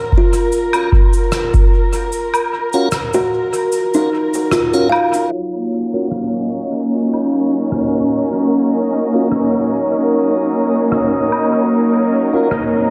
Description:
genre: ambient dub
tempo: 75 BPM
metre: 4/4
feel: swing 54% on 16ths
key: Eb minor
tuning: A4 = 440 Hz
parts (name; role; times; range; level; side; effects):
- dark studio string section; sustained chords; 0.0-12.9 s; Gb3 to Bb4; -19 LUFS; equal; low-pass filter
- electronic kick drum; drums; 0.1-1.7 s; none; -16 LUFS; equal; none
- kalimba; arpeggios; 0.2-7.5 s; Eb4 to F5; -22 LUFS; equal; dub echo
- cabasa, woodblock and rim click; drums; 0.3-12.7 s; none; -26 LUFS; equal; dub echo
- tonewheel organ; stabs; 2.7-12.5 s; Db4 to Bb4; -26 LUFS; equal; slow rotary speaker, dub echo
- backwards swelling texture; texture; 8.8-12.9 s; Eb5; -32 LUFS; equal; built-in reverb
room: light reverb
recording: echo-heavy mix, vinyl crackle, low-pass filter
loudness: -16 LUFS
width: mono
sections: 0.0-5.3 A section; 5.3-12.9 B section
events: kick drops out 2.1-5.3; filter sweep on string section 5.3-12.9; filter sweep 5.3-12.9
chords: 0.0 Ebm; 5.3 Ebm7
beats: 0.52 1.32 | 2.12 2.92 3.72 4.52 | 5.32 6.12 6.92 7.72 | 8.52 9.32 10.12 10.92 | 11.72 12.52

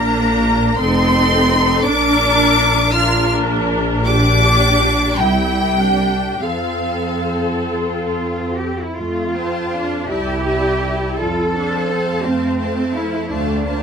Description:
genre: classical, slow romantic movement for string orchestra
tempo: 45-60 BPM (dotted quarters)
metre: 6/8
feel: rubato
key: F major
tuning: A4 = 436 Hz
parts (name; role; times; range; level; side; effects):
- clear studio violin section; melody; 0.0-13.8 s; F5 to F6; -21 LUFS; left 2 dB; none
- warm symphonic violin section; second line; 0.0-13.8 s; C5 to F6; -23 LUFS; left 2 dB; none
- rich symphonic viola section; accompaniment; 0.0-13.8 s; A3 to Bb4; -21 LUFS; left 1 dB; none
- rich symphonic cello section; bass; 0.0-13.8 s; F3 to A4; -20 LUFS; right 1 dB; none
- rich symphonic double bass section; bass; 0.0-13.8 s; F1 to F2; -21 LUFS; right 1 dB; none
room: light reverb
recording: none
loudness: -14 LUFS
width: side -6 dB against mid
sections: 0.0-9.0 A section; 9.0-13.8 A section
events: none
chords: 0.0 Bb; 0.8 F7; 1.9 Bb; 4.1 Gm/Bb; 5.2 C; 6.4 F; 10.1 C69; 11.2 F; 13.3 Dm7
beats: 0.79 | 1.87 2.95 | 4.07 5.20 | 6.43 7.74 | 8.98 10.09 | 11.20 12.26 | 13.31

